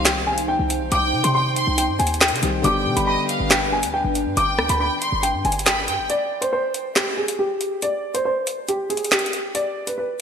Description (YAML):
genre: hip hop, drill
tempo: 139 BPM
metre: 4/4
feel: half-time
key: unclear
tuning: A4 = 440 Hz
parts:
  - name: dark upright piano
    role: melody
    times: 0.0-10.2 s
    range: G4 to D6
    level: -22 LUFS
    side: equal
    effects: low-pass filter, ping-pong delay
  - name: rich studio violin section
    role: second line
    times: 0.0-6.1 s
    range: Eb5 to C6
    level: -26 LUFS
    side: right 1 dB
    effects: ping-pong delay
  - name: warm concert grand piano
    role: accompaniment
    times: 0.0-6.1 s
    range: D3 to G4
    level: -29 LUFS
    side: left 4 dB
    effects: low-pass filter
  - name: dark analog pad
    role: sustained chords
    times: 0.0-6.1 s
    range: D4 to G5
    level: -29 LUFS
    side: right 1 dB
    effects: chorus
  - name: short 808-style bass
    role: bass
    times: 0.0-6.1 s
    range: G1 to C3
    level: -26 LUFS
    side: equal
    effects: none
  - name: drill drum kit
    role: drums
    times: 0.1-10.0 s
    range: handclaps, hi-hat, rim click, snare drum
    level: -21 LUFS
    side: equal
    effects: gated reverb
room: moderate lush hall reverb, RT60 2.1 s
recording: bright 1980s-style digital production, lossy compression artefacts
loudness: -18 LUFS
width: side -7 dB against mid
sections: 0.0-6.1 A section; 6.1-10.2 B section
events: break 6.1-10.2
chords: 0.0 Cm; 2.6 G; 6.1 N.C.